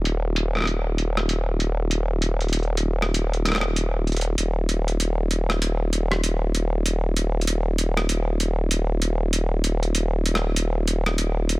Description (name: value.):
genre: glitch hop.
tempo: 97 BPM.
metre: 4/4.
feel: swing 61% on 16ths.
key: unclear.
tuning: A4 = 439 Hz.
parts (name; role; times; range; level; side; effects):
formant-sweep wobble bass; bass; 0.0-11.6 s; Eb1; -22 LUFS; equal; chorus.
boom bap sampler-style drum kit; drums; 0.1-11.6 s; hi-hat, rim click; -26 LUFS; right 1 dB; overdrive, low-pass filter on hats, low-pass filter on cymbals, low-pass filter on snare, low-pass filter on room.
room: little or no reverb.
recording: none.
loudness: -21 LUFS.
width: side -22 dB against mid.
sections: 0.0-11.6 A section.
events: none.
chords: none.